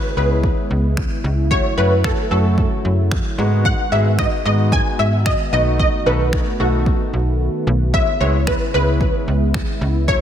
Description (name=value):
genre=dance-pop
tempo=112 BPM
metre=4/4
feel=straight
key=unclear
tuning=A4 = 438 Hz
part: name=wide unison pluck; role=melody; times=0.0-10.2 s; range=F#4 to G#5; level=-20 LUFS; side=equal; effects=ensemble chorus, ping-pong delay
part: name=warm concert grand piano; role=accompaniment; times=0.0-10.2 s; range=F#3 to A4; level=-26 LUFS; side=left 2 dB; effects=sidechain pumping
part: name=warm analog pad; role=sustained chords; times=0.0-10.2 s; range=C#3 to F#4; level=-25 LUFS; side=equal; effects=chorus, sidechain pumping
part: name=slap-like FM bass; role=bass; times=0.2-10.2 s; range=B1 to G#2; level=-18 LUFS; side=equal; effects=sidechain pumping
part: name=punchy analog drum machine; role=drums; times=0.4-10.2 s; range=finger snaps, kick drum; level=-21 LUFS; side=equal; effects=none
room=light reverb, digital ambience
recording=none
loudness=-15 LUFS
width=side -9 dB against mid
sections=0.0-10.2 A section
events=silent gap 7.4-7.9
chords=0.0 C#m7; 1.5 F#m7; 3.4 G#m7; 5.5 B7; 7.9 C#m7